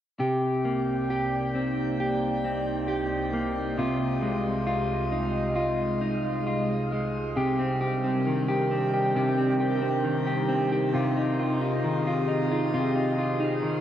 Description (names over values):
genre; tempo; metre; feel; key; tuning
dream pop; 67 BPM; 4/4; straight; C minor; A4 = 440 Hz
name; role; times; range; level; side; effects
warbly tape-like pad; sustained chords; 1.0-13.8 s; C2 to Eb5; -30 LUFS; right 1 dB; chorus, built-in reverb, phaser
clean electric guitar; arpeggios; 0.2-13.8 s; C3 to G4; -25 LUFS; equal; wide subtle chorus, ping-pong delay
room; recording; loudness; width
wet shimmer reverb, RT60 5.8 s; worn, warbling old tape, cassette tape, warbly pitch drift; -24 LUFS; side -10 dB against mid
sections
0.2-7.4 A section; 7.4-13.8 B section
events
none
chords
0.2 Cm7; 3.8 Fm7/C; 7.4 Cm7; 10.9 Fm7/C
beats
| 0.20 1.10 1.99 2.89 | 3.78 4.68 5.57 6.47 | 7.37 8.26 9.16 10.05 | 10.95 11.84 12.74 13.63